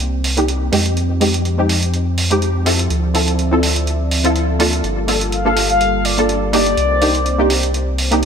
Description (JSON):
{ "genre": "deep house", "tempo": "124 BPM", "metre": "4/4", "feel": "swing 54% on 16ths", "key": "G minor", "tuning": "A4 = 440 Hz", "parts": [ { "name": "warm analog pad", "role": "sustained chords", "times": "0.0-8.2 s", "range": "F3 to E5", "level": "-24 LUFS", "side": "right 1 dB", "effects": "chorus" }, { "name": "round analog bass", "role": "bass", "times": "0.0-8.2 s", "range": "G1 to F2", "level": "-19 LUFS", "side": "equal", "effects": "none" }, { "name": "electronic hi-hat", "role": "drums", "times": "0.0-8.2 s", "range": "none", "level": "-21 LUFS", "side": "right 3 dB", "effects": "overdrive" }, { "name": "filtered dub chord stab", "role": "stabs", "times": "0.4-8.2 s", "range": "Ab3 to A4", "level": "-18 LUFS", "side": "equal", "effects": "ensemble chorus, ping-pong delay" }, { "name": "mellow horn-like synth lead", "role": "melody", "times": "5.3-8.2 s", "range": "D5 to F5", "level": "-18 LUFS", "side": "left 3 dB", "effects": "wide subtle chorus, ping-pong delay" } ], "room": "moderate lush hall reverb, RT60 1.8 s", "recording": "bright 1980s-style digital production", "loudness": "-14 LUFS", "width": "side -7 dB against mid", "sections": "0.0-8.2 A section", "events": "filter sweep on synth stab 0.0-8.2; filter sweep on analog synth pad 0.0-8.2", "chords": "0.0 Cm9; 0.7 Fm9; 2.9 Dm9; 4.8 Gm9; 6.8 Cm9", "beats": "0.00 0.48 | 0.97 1.45 1.94 2.42 | 2.90 3.39 3.87 4.36 | 4.84 5.32 5.81 6.29 | 6.78 7.26 7.74 8.23" }